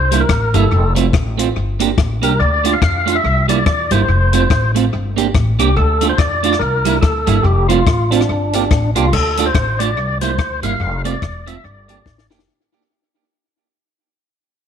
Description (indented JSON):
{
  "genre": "ska",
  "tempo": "143 BPM",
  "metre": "4/4",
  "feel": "swing 59% on 8ths",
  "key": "unclear",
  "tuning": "A4 = 440 Hz",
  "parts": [
    { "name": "percussive tonewheel organ", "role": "melody", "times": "0.0-12.3 s", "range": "D4 to F5", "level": "-18 LUFS", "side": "left 1 dB", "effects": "overdrive, fast rotary speaker" },
    { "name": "upright bass", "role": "bass", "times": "0.0-12.4 s", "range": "E1 to F2", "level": "-17 LUFS", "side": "left 1 dB", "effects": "none" },
    { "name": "clean electric guitar", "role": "accompaniment", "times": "0.1-12.4 s", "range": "G3 to G4", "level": "-19 LUFS", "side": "right 11 dB", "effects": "tape echo" },
    { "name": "compact cocktail drum kit", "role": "drums", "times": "0.1-12.5 s", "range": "crash cymbal, hi-hat, kick drum, rim click, snare drum", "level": "-19 LUFS", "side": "left 3 dB", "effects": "tape echo" }
  ],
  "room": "light reverb, small room ambience",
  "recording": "1960s-style stereo",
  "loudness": "-13 LUFS",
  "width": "side -8 dB against mid",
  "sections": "0.0-9.1 A section; 9.1-12.5 B section",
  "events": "fade-out 9.1-12.5; drum fill 12.1-12.5",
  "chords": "0.0 C7; 0.7 F; 1.6 Gm; 2.4 Dm; 3.2 C7; 4.1 F; 4.9 Gm; 5.8 Dm; 6.6 C7; 7.4 F; 8.3 Gm; 9.1 Dm; 10.0 C7; 10.8 F; 11.6 Gm"
}